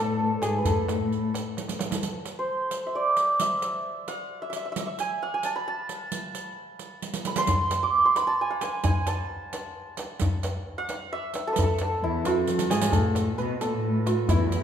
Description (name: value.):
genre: Persian modal ensemble.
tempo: 88 BPM (dotted quarters).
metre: 6/8.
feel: straight.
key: A avaz esfahan.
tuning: A4 = 439 Hz.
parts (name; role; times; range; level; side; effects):
santur; melody; 0.0-14.6 s; E4 to D6; -26 LUFS; right 2 dB; none.
dark studio cello section; second line; 0.0-1.8, 12.0-14.6 s; E2 to B2; -27 LUFS; left 2 dB; none.
tombak; percussion; 0.2-2.0, 7.5-14.4 s; none; -28 LUFS; left 1 dB; none.
riq; percussion; 0.4-14.6 s; none; -34 LUFS; right 4 dB; none.
room: wet recital hall reverb, RT60 1.6 s.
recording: minimal, uncompressed stereo recording.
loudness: -24 LUFS.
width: side -9 dB against mid.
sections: 0.0-2.0 A section; 2.0-12.9 B section; 12.9-14.6 C section.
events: drum fill 1.6-2.0, 7.0-7.5, 12.5-12.9.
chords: none.